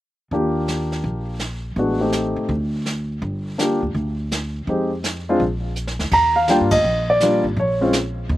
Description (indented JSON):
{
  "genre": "jazz piano trio",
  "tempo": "165 BPM",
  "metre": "4/4",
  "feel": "swing 64% on 8ths",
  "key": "Eb major",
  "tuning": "A4 = 440 Hz",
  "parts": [
    { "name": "warm grand piano", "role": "melody", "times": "0.3-7.9 s", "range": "G3 to Bb5", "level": "-18 LUFS", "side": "equal", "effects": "none" },
    { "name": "upright bass", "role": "bass", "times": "0.3-8.4 s", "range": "G1 to A2", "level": "-25 LUFS", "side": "equal", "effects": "none" },
    { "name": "vintage brush drum kit", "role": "drums", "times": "0.3-8.4 s", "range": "brushed snare drum, crash cymbal, hi-hat, kick drum, ride cymbal, snare drum", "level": "-27 LUFS", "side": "right 1 dB", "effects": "none" }
  ],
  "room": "little or no reverb",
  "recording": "recorded outdoors, with no room sound",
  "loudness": "-18 LUFS",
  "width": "side -15 dB against mid",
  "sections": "0.3-6.1 A section; 6.1-8.4 B section",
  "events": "drum fill 5.8-6.1; band accent 6.7",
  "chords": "0.3 Ebmaj7; 1.8 Am7b5; 2.5 N.C.; 3.2 G5; 4.7 Fm9; 5.4 Bb; 6.1 Ebmaj7; 7.6 Bbm"
}